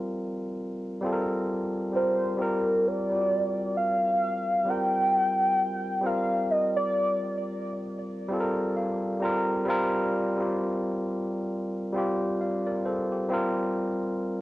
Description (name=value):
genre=R&B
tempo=66 BPM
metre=4/4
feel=swing 58% on 16ths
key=G minor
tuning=A4 = 435 Hz
part: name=barky tine electric piano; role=accompaniment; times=0.0-14.4 s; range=G3 to Bb5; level=-28 LUFS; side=equal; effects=overdrive, cassette tape
part: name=warm velvety synth lead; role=melody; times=2.0-7.6 s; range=Bb4 to G5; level=-25 LUFS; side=equal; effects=chorus, tape echo
room=moderate booth ambience, RT60 0.2 s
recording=home recording on cassette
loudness=-25 LUFS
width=side -16 dB against mid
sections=0.0-14.4 A section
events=tine electric piano fill 8.3-9.7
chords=0.0 Gm11; 2.4 Gm7; 6.0 Gm11; 9.7 Gm7; 13.3 Gm11